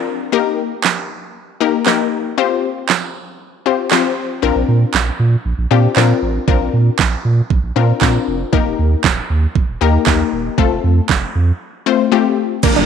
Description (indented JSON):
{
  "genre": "dance-pop",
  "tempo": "117 BPM",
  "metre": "4/4",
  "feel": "straight",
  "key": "Bb major",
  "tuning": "A4 = 441 Hz",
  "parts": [
    { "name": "wide unison pluck", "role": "accompaniment", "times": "0.0-12.8 s", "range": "A3 to C5", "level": "-16 LUFS", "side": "left 10 dB", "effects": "none" },
    { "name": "smooth R&B drum kit", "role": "drums", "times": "0.8-12.9 s", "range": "crash cymbal, handclaps, hi-hat, kick drum, shaker, snare drum", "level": "-17 LUFS", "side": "right 6 dB", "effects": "none" },
    { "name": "saturated sub bass", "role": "bass", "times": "4.4-12.8 s", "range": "Eb1 to Bb2", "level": "-15 LUFS", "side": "right 2 dB", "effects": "sidechain pumping" },
    { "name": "wide unison pluck", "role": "arpeggios", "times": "12.6-12.9 s", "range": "Bb3 to D4", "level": "-16 LUFS", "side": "right 14 dB", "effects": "sidechain pumping, slapback echo" },
    { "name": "downlifter", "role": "sound effects", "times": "12.6-12.9 s", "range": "none", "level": "-16 LUFS", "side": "left 2 dB", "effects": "none" }
  ],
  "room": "light reverb",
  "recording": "1960s-style stereo with parts hard left and right",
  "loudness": "-13 LUFS",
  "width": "side -7 dB against mid",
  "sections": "0.0-12.6 A section",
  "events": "none",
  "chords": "0.3 Eb; 2.4 Fsus2; 4.4 Bbadd9; 8.5 Eb; 10.6 F"
}